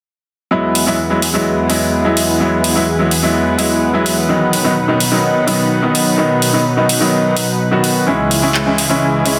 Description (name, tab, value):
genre	EDM, festival progressive house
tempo	127 BPM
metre	4/4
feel	straight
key	E major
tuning	A4 = 440 Hz
part	clear baby grand piano	accompaniment	0.5-9.4 s	D#3 to F#4	-17 LUFS	equal	delay
part	lush unison pad	sustained chords	0.5-9.4 s	C#2 to F#5	-20 LUFS	equal	chorus
part	big-room dance drum kit	drums	0.8-9.3 s	handclaps, hi-hat	-21 LUFS	equal	none
room	moderate lush hall reverb, RT60 2.2 s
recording	dense, heavily limited modern master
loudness	-14 LUFS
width	mono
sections	0.5-9.4 A section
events	none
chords	0.5 Eadd9; 4.3 B; 8.1 C#m